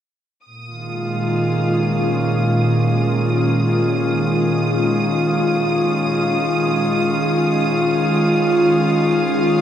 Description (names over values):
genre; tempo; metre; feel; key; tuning
ambient; free time; none; none; Bb minor; A4 = 440 Hz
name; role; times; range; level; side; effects
rich symphonic violin section; texture; 0.4-9.6 s; Eb6; -26 LUFS; right 1 dB; shimmer reverb
airy breathy pad; sustained chords; 0.5-9.6 s; Bb2 to F4; -16 LUFS; equal; chorus
room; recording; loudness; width
wet huge ambient reverb, RT60 7.3 s; dreamy mix soaked in reverb; -16 LUFS; side -9 dB against mid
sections
0.4-9.6 A section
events
none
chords
0.4 Bbm7; 6.7 Eb9sus4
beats
free time